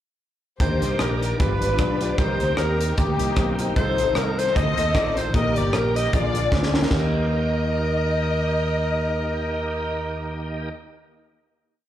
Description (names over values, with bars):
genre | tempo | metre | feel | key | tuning
uptempo gospel | 153 BPM | 4/4 | swing 56% on 8ths | Eb major | A4 = 442 Hz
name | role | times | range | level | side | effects
edgy alto saxophone | melody | 0.6-10.7 s | G4 to Eb5 | -28 LUFS | right 3 dB | slapback echo
warm studio string section | melody | 0.6-10.7 s | Bb3 to Eb5 | -26 LUFS | left 3 dB | none
dark upright piano | accompaniment | 0.6-10.7 s | Eb2 to D5 | -31 LUFS | left 3 dB | slapback echo
bright tonewheel organ | sustained chords | 0.6-10.7 s | D3 to D5 | -32 LUFS | right 2 dB | slow rotary speaker, chorus vibrato
fingered electric bass | bass | 0.6-10.7 s | G1 to Eb2 | -26 LUFS | equal | none
crisp fusion drum kit | drums | 0.6-7.0 s | china cymbal, hi-hat, kick drum, rim click, snare drum | -24 LUFS | equal | none
room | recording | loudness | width
light reverb, small room ambience | live gig heard through the venue's PA, club reverb | -20 LUFS | side -11 dB against mid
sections
0.6-6.9 breakdown; 6.9-10.0 final chord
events
drum fill 6.5-6.9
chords
0.6 Ebmaj7; 1.4 G7; 2.2 Cm7; 3.8 F7; 5.3 Eb; 6.1 Bb7; 6.9 Eb